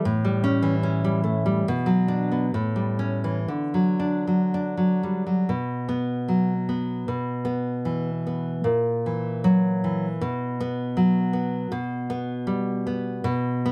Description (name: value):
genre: romantic piece for solo classical guitar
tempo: 58-82 BPM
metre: 2/4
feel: rubato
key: D major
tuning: A4 = 440 Hz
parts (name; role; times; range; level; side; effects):
- nylon-string guitar; solo; 0.0-13.7 s; A2 to D4; -25 LUFS; equal; none
room: light reverb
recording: none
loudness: -25 LUFS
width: mono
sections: 0.0-5.5 A section; 5.5-13.7 B section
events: none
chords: 0.0 A7; 1.6 Bm; 2.5 A7; 3.5 D; 5.5 B5; 7.1 Bsus4; 8.7 F#7/A#; 10.2 B5; 11.7 G/B